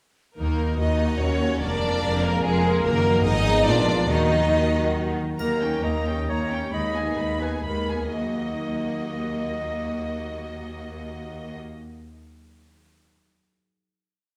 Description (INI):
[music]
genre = classical, dramatic, fast romantic movement for symphony orchestra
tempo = 122-148 BPM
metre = 3/4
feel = straight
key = Eb minor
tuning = A4 = 442 Hz
[part]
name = clear studio violin section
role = melody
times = 0.4-11.6 s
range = Ab3 to Cb6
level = -34 LUFS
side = equal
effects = none
[part]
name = mellow hollow large flute ensemble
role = second line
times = 0.4-5.1 s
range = Ab4 to Eb5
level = -34 LUFS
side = equal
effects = none
[part]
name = rich studio violin section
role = second line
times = 0.4-11.6 s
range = Eb4 to Eb5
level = -31 LUFS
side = equal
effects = none
[part]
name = rich symphonic viola section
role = accompaniment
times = 0.4-11.6 s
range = Ab3 to Bb4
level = -33 LUFS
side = equal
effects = none
[part]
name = mellow French horn section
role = sustained chords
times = 0.4-5.2 s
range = Bb3 to Bb4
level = -34 LUFS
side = equal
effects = none
[part]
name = warm trombone section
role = sustained chords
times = 0.4-5.1 s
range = Eb3 to Ab3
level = -33 LUFS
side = equal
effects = none
[part]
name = concert harp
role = arpeggios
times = 0.4-12.4 s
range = F2 to Bb5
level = -34 LUFS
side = equal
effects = none
[part]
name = rich symphonic cello section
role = bass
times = 0.4-11.6 s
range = Eb2 to Eb3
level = -34 LUFS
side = equal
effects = none
[part]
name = rich symphonic double bass section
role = bass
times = 0.4-11.6 s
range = F1 to Eb2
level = -31 LUFS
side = equal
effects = none
[part]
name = timpani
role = percussion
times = 4.1-4.7 s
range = Eb3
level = -33 LUFS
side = equal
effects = none
[part]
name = warm clarinet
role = second line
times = 5.4-11.6 s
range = Bb4 to Eb5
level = -33 LUFS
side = equal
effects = none
[part]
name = triangle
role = percussion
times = 5.4-6.2 s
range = none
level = -51 LUFS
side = equal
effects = none
[sound]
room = wet recital hall reverb, RT60 1.3 s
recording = recorded in a church or concert hall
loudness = -24 LUFS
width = mono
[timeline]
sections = 0.4-5.4 A section; 5.4-8.1 coda; 8.1-10.8 final chord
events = slowing down 4.7-8.1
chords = 0.4 Ebm; 1.6 Bb7/F; 2.9 Ebm/Gb; 3.3 Fm7b5/Ab; 3.7 Bb7b9; 4.1 Ebm; 5.4 Eb7; 6.7 Abm/Eb; 8.1 Ebm